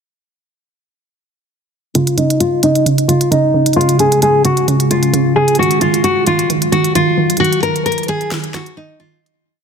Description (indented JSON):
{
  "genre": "hip hop, trap",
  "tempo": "132 BPM",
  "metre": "4/4",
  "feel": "half-time",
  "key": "Db major",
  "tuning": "A4 = 440 Hz",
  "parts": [
    { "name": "nylon-string guitar", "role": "melody", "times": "1.9-9.2 s", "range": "Eb4 to Bb4", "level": "-14 LUFS", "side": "left 2 dB", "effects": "low-pass filter, digital delay" },
    { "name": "warbly dusty pluck", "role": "accompaniment", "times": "1.9-9.2 s", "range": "Db3 to Eb3", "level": "-17 LUFS", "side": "right 4 dB", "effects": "chorus, low-pass filter" },
    { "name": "deep dark ambient pad", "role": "sustained chords", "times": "3.6-9.2 s", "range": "Db3 to F4", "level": "-20 LUFS", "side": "equal", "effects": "chorus, built-in reverb, low-pass filter" },
    { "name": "trap drum kit", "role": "drums", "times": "1.9-9.3 s", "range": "finger snaps, hi-hat, snare drum", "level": "-21 LUFS", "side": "right 2 dB", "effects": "none" }
  ],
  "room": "light reverb, digital ambience",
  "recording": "dense, heavily limited modern master",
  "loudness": "-11 LUFS",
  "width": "side -6 dB against mid",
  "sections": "1.9-9.2 breakdown",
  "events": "filter sweep 1.9-9.2; fade-out 7.4-9.2; break 8.8-9.2",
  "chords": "1.9 Db; 5.6 Ebmadd9"
}